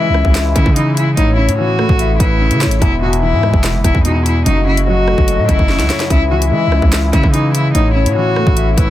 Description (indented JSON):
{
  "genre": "hip hop, drill",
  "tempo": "146 BPM",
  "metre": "4/4",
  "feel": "half-time",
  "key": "C# minor",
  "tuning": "A4 = 440 Hz",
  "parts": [
    { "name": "clear cello", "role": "melody", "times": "0.0-8.9 s", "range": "D#4 to F#4", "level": "-19 LUFS", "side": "left 1 dB", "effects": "low-pass filter" },
    { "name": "hollow clarinet-like synth lead", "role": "second line", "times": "0.0-8.9 s", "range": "B4 to E5", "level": "-21 LUFS", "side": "left 8 dB", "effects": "chorus, tape echo" },
    { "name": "dark baby grand piano", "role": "accompaniment", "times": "0.0-8.9 s", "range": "E2 to C#4", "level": "-18 LUFS", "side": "right 1 dB", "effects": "low-pass filter" },
    { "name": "accordion", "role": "sustained chords", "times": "0.0-8.9 s", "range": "B2 to F#4", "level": "-27 LUFS", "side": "left 1 dB", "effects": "light tremolo tuning" },
    { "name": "distorted 808-style bass", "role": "bass", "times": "0.0-8.9 s", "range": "E1 to E3", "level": "-15 LUFS", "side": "equal", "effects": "distortion" },
    { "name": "drill drum kit", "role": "drums", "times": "0.1-8.9 s", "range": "handclaps, hi-hat, kick drum, rim click, snare drum", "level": "-15 LUFS", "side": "equal", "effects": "none" }
  ],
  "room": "small room ambience",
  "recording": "dense, heavily limited modern master",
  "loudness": "-11 LUFS",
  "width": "side -13 dB against mid",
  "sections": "0.0-8.9 A section",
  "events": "drum fill 5.7-6.1",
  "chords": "0.0 C#m; 1.2 Aadd9; 2.8 E; 4.5 F#m; 6.1 C#m; 7.7 Aadd9"
}